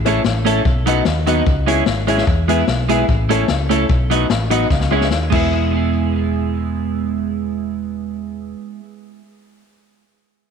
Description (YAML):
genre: ska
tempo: 148 BPM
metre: 4/4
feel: swing 53% on 8ths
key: E major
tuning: A4 = 440 Hz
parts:
  - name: warm upright piano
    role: stabs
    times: 0.0-8.5 s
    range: D#4 to E5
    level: -22 LUFS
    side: left 11 dB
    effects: none
  - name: hollow-body short-scale fingered electric bass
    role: bass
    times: 0.0-8.5 s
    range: E1 to E2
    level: -20 LUFS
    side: equal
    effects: none
  - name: clean electric guitar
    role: accompaniment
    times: 0.1-8.9 s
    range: F#3 to A4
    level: -20 LUFS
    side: right 10 dB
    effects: wide subtle chorus, tape echo
  - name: vintage drum kit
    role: drums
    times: 0.1-5.4 s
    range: crash cymbal, hi-hat, kick drum, snare drum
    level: -20 LUFS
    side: left 3 dB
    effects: tape echo
room: light reverb, studio reverb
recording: 1960s-style stereo with parts hard left and right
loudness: -15 LUFS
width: side -6 dB against mid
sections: 0.0-5.5 A section; 5.5-8.8 B section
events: drum fill 4.7-5.5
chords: 0.0 A; 0.7 B; 1.5 C#m; 2.3 E; 3.1 A; 3.9 B; 4.7 C#m; 5.3 E